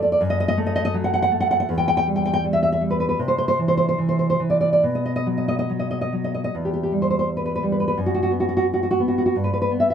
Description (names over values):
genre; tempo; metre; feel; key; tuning
romantic piece for solo classical guitar; 67-88 BPM; 2/4; rubato; E minor; A4 = 441 Hz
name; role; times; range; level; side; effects
nylon-string guitar; solo; 0.0-9.9 s; E2 to G5; -19 LUFS; equal; none
room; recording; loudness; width
light reverb; none; -19 LUFS; side -8 dB against mid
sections
0.0-6.5 A section; 6.5-9.9 B section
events
none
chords
0.2 F#m6; 1.7 Em; 3.2 Cadd9; 4.8 B5; 6.5 Em; 8.0 B5/F#; 9.4 G6